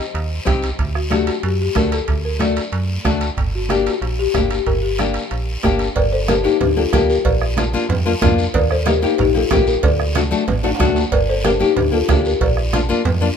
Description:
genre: latin, cumbia.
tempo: 186 BPM.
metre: 4/4.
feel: straight.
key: G harmonic minor, G minor from 6.0 s.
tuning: A4 = 440 Hz.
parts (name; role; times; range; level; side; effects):
folk marimba with soft mallets; melody; 0.0-13.4 s; D4 to Eb5; -20 LUFS; left 4 dB; none.
nylon-string guitar; accompaniment; 0.0-13.3 s; A3 to G4; -21 LUFS; left 5 dB; none.
metallic FM bass; bass; 0.1-13.3 s; G1 to F#2; -21 LUFS; right 1 dB; none.
congas; percussion; 0.1-13.2 s; none; -26 LUFS; right 5 dB; none.
guiro; percussion; 0.1-13.4 s; none; -30 LUFS; left 2 dB; none.
timbales and cowbell; percussion; 0.1-13.2 s; none; -27 LUFS; right 6 dB; none.
bombo; percussion; 0.5-12.9 s; none; -22 LUFS; right 4 dB; none.
room: light reverb.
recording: minimal, uncompressed stereo recording.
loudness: -15 LUFS.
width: side -7 dB against mid.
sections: 0.0-6.0 A section; 6.0-13.4 B section.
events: drum fill 10.6-11.1.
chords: 0.0 Cm; 0.8 D; 3.4 Gm; 7.3 Bb; 8.5 Eb; 9.8 D; 11.1 Gm; 12.4 Bb.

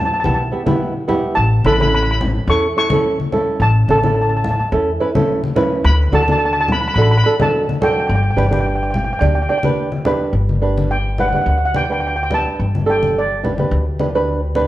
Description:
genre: calypso.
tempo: 107 BPM.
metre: 4/4.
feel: straight.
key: G major.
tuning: A4 = 440 Hz.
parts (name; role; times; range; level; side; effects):
steel pan; melody; 0.0-14.3 s; D5 to C#6; -20 LUFS; equal; none.
upright bass; bass; 0.0-14.7 s; G1 to E2; -18 LUFS; left 1 dB; none.
flamenco guitar; accompaniment; 0.2-14.7 s; B3 to D5; -18 LUFS; right 2 dB; none.
congas; percussion; 0.2-14.7 s; none; -22 LUFS; left 2 dB; none.
room: moderate recital hall reverb, RT60 1.7 s.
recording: worn, warbling old tape, cassette tape, warbly pitch drift.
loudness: -14 LUFS.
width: side -15 dB against mid.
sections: 0.0-10.3 A section; 10.3-14.7 B section.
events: none.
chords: 0.0 Em; 1.4 A; 5.8 D; 8.1 G.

